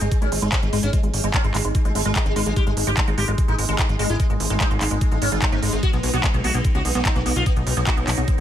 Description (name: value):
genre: psychedelic trance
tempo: 147 BPM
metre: 4/4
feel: straight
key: unclear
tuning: A4 = 440 Hz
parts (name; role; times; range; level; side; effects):
- sitar; melody; 0.0-8.4 s; Ab3 to G4; -28 LUFS; equal; phaser, vintage 12-bit sampler grit, sidechain pumping, digital delay
- evolving wavetable pad; sustained chords; 0.4-8.4 s; Ab3 to Eb4; -31 LUFS; equal; phaser, built-in reverb, sidechain pumping
- liquid acid bass; riff; 0.0-8.4 s; G3 to Eb4; -29 LUFS; moving between left 4 dB and right 4 dB; phaser, auto-pan, sidechain pumping, digital delay
- plucky analog bass; bass; 0.0-8.4 s; Ab1 to Db2; -23 LUFS; equal; none
- big-room dance drum kit; drums; 0.0-8.4 s; handclaps, hi-hat; -26 LUFS; right 1 dB; studio reverb
- granular cloud pad; texture; 0.0-8.4 s; B3 to B5; -34 LUFS; right 2 dB; built-in reverb, sidechain pumping
- electronic kick drum; drums; 0.1-8.4 s; none; -21 LUFS; equal; overdrive, studio reverb
room: little or no reverb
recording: none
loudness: -18 LUFS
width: side -11 dB against mid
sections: 0.0-8.4 A section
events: filter sweep on acid bass 0.0-8.4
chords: 0.0 Ab5; 5.8 B5